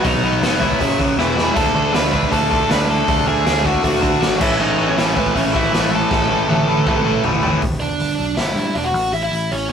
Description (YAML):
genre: punk rock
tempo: 158 BPM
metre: 4/4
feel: straight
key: A major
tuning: A4 = 440 Hz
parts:
  - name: high-gain lead guitar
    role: melody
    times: 0.0-9.7 s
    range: B3 to B5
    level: -20 LUFS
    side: right 1 dB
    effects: distortion
  - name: cranked stack guitar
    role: riff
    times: 0.0-7.6 s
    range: E2 to D4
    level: -18 LUFS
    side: equal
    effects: overdrive
  - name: picked electric bass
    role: bass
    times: 0.0-9.7 s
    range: E1 to G2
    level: -24 LUFS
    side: equal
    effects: none
  - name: raw garage drum kit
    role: drums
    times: 0.0-9.6 s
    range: crash cymbal, hi-hat, kick drum, snare drum, toms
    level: -21 LUFS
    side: equal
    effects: none
room: light reverb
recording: rough rehearsal-room recording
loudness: -15 LUFS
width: side -7 dB against mid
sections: 0.0-7.6 A section; 7.6-9.7 B section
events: drum fill 1.2-1.6, 6.1-7.6; half time 7.6-9.7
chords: 0.0 B; 0.8 F#5; 1.2 E5; 1.6 D; 4.4 A; 7.6 G; 8.9 A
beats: | 0.05 0.43 0.81 1.19 | 1.56 1.94 2.32 2.70 | 3.08 3.46 3.83 4.21 | 4.59 4.97 5.35 5.73 | 6.11 6.48 6.86 7.24 | 7.62 8.00 8.38 8.76 | 9.13 9.51